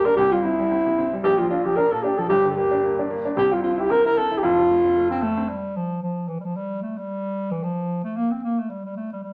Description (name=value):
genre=celtic folk, Celtic reel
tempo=226 BPM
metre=4/4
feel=swing 57% on 8ths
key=F major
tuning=A4 = 440 Hz
part: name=dark clarinet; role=melody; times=0.0-9.3 s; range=E3 to Bb4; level=-24 LUFS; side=equal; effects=none
part: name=mellow hollow baroque flute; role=second line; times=0.0-5.2 s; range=E5 to C6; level=-29 LUFS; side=equal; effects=none
part: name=clear upright piano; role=accompaniment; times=0.0-5.5 s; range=F1 to E4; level=-29 LUFS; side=equal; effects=none
room=wet club reverb, RT60 0.9 s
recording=none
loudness=-22 LUFS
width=mono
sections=0.0-5.5 A section; 5.5-9.3 B section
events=none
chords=0.2 C; 1.2 Bb; 2.3 Gm; 3.4 C; 4.4 F; 5.5 N.C.